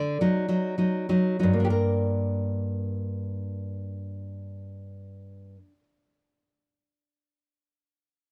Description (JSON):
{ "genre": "romantic piece for solo classical guitar", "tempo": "67 BPM", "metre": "4/4", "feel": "rubato", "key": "G minor", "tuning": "A4 = 439 Hz", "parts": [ { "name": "nylon-string guitar", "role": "solo", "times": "0.0-5.8 s", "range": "G2 to D5", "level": "-28 LUFS", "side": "equal", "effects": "none" } ], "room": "wet booth ambience, RT60 0.2 s", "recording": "dark, warm production", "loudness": "-27 LUFS", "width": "mono", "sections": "0.0-1.7 A section; 1.7-5.3 B section", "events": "slowing down 0.0-1.7", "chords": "0.0 D; 1.7 Gm" }